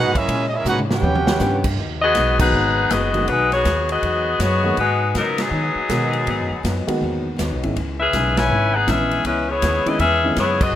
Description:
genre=jazz, big band swing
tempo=161 BPM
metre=4/4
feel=swing 65% on 8ths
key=G# minor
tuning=A4 = 440 Hz
part: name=bright trumpet section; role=melody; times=0.0-1.6 s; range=C#4 to G5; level=-23 LUFS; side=right 2 dB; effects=plate reverb
part: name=clear trombone section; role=second line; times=0.0-1.6 s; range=G#3 to G4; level=-24 LUFS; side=right 5 dB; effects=plate reverb
part: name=picked steel-string acoustic guitar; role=accompaniment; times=0.0-10.8 s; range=G#2 to G4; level=-30 LUFS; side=left 4 dB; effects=plate reverb
part: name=upright bass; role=bass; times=0.0-10.8 s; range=F#1 to D#3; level=-24 LUFS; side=equal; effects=none
part: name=swinging big-band drum kit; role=drums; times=0.2-10.7 s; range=crash cymbal, hi-hat, kick drum, ride cymbal, snare drum, toms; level=-26 LUFS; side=right 1 dB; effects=none
part: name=bright saxophone section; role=melody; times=2.0-10.8 s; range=F#3 to G#5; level=-18 LUFS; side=left 3 dB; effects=plate reverb
part: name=warm upright piano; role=accompaniment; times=2.4-10.4 s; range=D#3 to A#4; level=-25 LUFS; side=right 1 dB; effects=plate reverb
room=moderate small room reverb, RT60 0.5 s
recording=rough home demo mix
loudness=-17 LUFS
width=side -11 dB against mid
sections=0.0-1.8 A section; 1.8-10.8 B section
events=drum fill 0.7-1.4; band accent 2.3, 5.3, 8.3, 10.6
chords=0.3 A#m7b5; 1.0 D#7alt; 1.8 G#m7; 7.8 C#m7

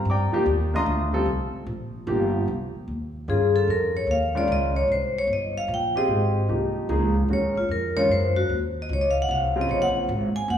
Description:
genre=modal jazz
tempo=150 BPM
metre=3/4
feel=swing 67% on 8ths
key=F minor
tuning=A4 = 437 Hz
part: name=warm baby grand piano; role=accompaniment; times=0.0-10.1 s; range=Db3 to Eb6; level=-26 LUFS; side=equal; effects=none
part: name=upright bass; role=bass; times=0.0-10.6 s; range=Gb1 to G2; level=-26 LUFS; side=equal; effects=none
part: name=vibraphone with medium hard mallets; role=melody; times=3.3-10.6 s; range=F4 to Ab5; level=-23 LUFS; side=left 2 dB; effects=none
room=wet recital hall reverb, RT60 1.7 s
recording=recorded in a church or concert hall, small room ambience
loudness=-21 LUFS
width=side -9 dB against mid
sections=0.0-2.5 A section; 2.5-10.6 A section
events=vibraphone solo 2.5-10.6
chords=0.0 Cm11; 2.5 Fm9; 7.3 Ebm9

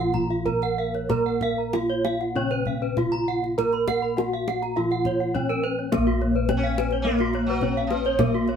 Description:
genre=Balinese gamelan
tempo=94-105 BPM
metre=4/4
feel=straight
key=Bb pelog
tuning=A4 = 440 Hz
part: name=gamelan-type bronze metallophone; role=melody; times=0.0-8.6 s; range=Bb3 to Bb4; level=-25 LUFS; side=right 1 dB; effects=none
part: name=gamelan-type bronze metallophone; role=accompaniment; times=0.0-8.6 s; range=Db3-30c to Bb3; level=-33 LUFS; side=right 1 dB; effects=none
part: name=gamelan-type bronze metallophone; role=arpeggios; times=0.0-8.5 s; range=Gb4-20c to Cb6+20c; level=-28 LUFS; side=right 3 dB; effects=none
part: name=gamelan-type bossed gongs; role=bass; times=0.0-8.6 s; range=Bb1 to Bb4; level=-31 LUFS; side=left 1 dB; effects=none
part: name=kendang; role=percussion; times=0.1-8.5 s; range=none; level=-30 LUFS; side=left 2 dB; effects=none
part: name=gamelan-type bronze metallophone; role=arpeggios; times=0.3-8.6 s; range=Bb4 to Cb6+20c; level=-30 LUFS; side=left 5 dB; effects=none
part: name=sitar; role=second line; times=6.6-8.6 s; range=F3-30c to Db4-30c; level=-32 LUFS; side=right 1 dB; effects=none
room=moderate studio reverb, RT60 0.8 s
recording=band playing live in one room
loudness=-22 LUFS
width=side -7 dB against mid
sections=0.0-5.9 A section; 5.9-8.6 B section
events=none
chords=none

